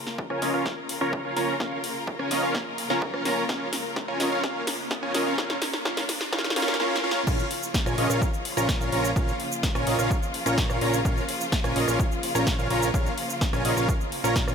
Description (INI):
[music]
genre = EDM, festival progressive house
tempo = 127 BPM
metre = 4/4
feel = straight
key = Bb minor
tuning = A4 = 440 Hz
[part]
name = bright studio string section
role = sustained chords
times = 0.0-14.5 s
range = Db3 to Bb4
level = -34 LUFS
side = left 1 dB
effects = sidechain pumping
[part]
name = riser and swell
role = sound effects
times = 1.9-7.3 s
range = none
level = -37 LUFS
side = equal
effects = none
[part]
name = big-room dance drum kit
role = drums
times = 0.1-14.5 s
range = crash cymbal, hi-hat, rim click, shaker, snare drum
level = -30 LUFS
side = equal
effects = none
[part]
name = electronic kick drum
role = drums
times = 0.2-14.5 s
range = none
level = -27 LUFS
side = equal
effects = high-pass filter on kick, high-pass filter on room
[part]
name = dense compressed supersaw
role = riff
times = 0.3-14.5 s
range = Db4 to Bb5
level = -26 LUFS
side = right 1 dB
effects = sidechain pumping, low-pass filter, tape echo
[part]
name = fat analog bass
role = bass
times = 7.3-14.5 s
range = Bb1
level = -29 LUFS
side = equal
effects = sidechain pumping
[sound]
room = light reverb, digital ambience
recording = high-pass filter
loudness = -23 LUFS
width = side -6 dB against mid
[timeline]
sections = 0.0-7.3 A section; 7.3-14.5 B section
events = build-up 0.0-7.3; drum fill 0.0-6.8, 6.8-7.3; filter sweep on supersaw synth 0.0-7.3; filter sweep 0.0-7.3; riser 1.9-7.3; swell 6.3-7.3; drop 7.3-14.5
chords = 0.0 Bbm